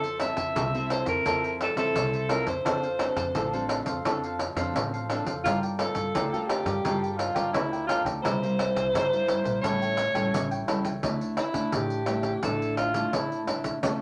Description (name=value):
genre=samba and choro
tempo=86 BPM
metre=4/4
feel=straight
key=F major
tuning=A4 = 440 Hz
part: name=breathy alto saxophone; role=melody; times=0.0-13.5 s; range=E4 to E5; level=-31 LUFS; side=equal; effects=none
part: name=cavaquinho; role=accompaniment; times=0.0-11.0 s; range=D4 to G5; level=-36 LUFS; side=equal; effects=none
part: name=nylon-string guitar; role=accompaniment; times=0.0-14.0 s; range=G2 to A4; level=-35 LUFS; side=equal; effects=none
part: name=upright bass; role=bass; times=0.0-14.0 s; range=A1 to D3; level=-39 LUFS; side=equal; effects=none
part: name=pandeiro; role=percussion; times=0.0-14.0 s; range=none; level=-32 LUFS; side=equal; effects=none
room=wet studio ambience, RT60 0.5 s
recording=none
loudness=-27 LUFS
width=mono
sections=0.0-11.0 A section; 11.0-14.0 B section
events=alto saxophone solo 11.0-14.0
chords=0.0 Fmaj7; 2.7 Dm7; 5.4 Gm9; 8.2 C7; 9.6 A7; 11.0 Dsus2